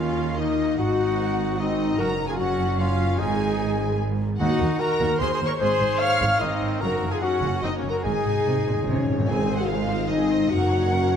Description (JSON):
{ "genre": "cinematic, heroic adventure film score", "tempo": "149 BPM", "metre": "3/4", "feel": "straight", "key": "Ab mixolydian", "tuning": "A4 = 440 Hz", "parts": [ { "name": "warm symphonic violin section", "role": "melody", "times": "0.0-11.2 s", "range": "Db5 to F6", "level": "-33 LUFS", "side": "left 2 dB", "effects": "none" }, { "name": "dark cor anglais", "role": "second line", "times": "0.0-9.1 s", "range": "Db4 to F5", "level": "-33 LUFS", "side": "right 3 dB", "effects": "none" }, { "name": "hollow concert flute", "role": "second line", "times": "0.0-11.2 s", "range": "Db5 to F6", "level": "-33 LUFS", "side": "left 1 dB", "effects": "none" }, { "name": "warm clarinet", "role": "second line", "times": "0.0-11.2 s", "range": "Ab3 to F5", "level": "-34 LUFS", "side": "left 1 dB", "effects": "none" }, { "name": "warm symphonic violin section", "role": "second line", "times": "0.0-11.2 s", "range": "C5 to F6", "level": "-36 LUFS", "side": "left 2 dB", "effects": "none" }, { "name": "warm symphonic viola section", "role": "accompaniment", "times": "0.0-11.2 s", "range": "Bb3 to F5", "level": "-33 LUFS", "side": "right 1 dB", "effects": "none" }, { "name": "dark French horn section", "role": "sustained chords", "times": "0.0-11.2 s", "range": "Db4 to F5", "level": "-26 LUFS", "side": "left 3 dB", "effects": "none" }, { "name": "concert harp", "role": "arpeggios", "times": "0.0-11.2 s", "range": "Gb2 to Db6", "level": "-33 LUFS", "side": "left 6 dB", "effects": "none" }, { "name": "mellow trumpet", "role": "stabs", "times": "0.0-9.1 s", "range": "Bb3 to Db5", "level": "-31 LUFS", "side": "right 2 dB", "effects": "none" }, { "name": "rich studio double bass section", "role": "bass", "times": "0.0-11.2 s", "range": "Gb1 to Eb2", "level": "-29 LUFS", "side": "right 4 dB", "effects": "none" }, { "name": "rich symphonic cello section", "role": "bass", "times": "0.0-11.2 s", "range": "Eb2 to Eb3", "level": "-29 LUFS", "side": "right 3 dB", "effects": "none" }, { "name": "timpani", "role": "percussion", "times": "3.2-5.0, 8.0-9.9 s", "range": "Ab2 to Eb3", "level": "-31 LUFS", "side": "equal", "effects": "none" } ], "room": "wet scoring stage reverb, RT60 2.0 s", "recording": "none", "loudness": "-21 LUFS", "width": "side -8 dB against mid", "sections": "0.0-9.3 A section; 9.3-11.2 B section", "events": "timpani fill 8.0-9.3", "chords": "0.0 Ebm; 0.8 Abadd9; 2.0 Gbadd9; 3.2 Abadd9; 4.4 Ebm; 5.6 Abadd9; 6.8 Gbadd9; 8.0 Abadd9; 9.3 Ab; 10.5 Gb" }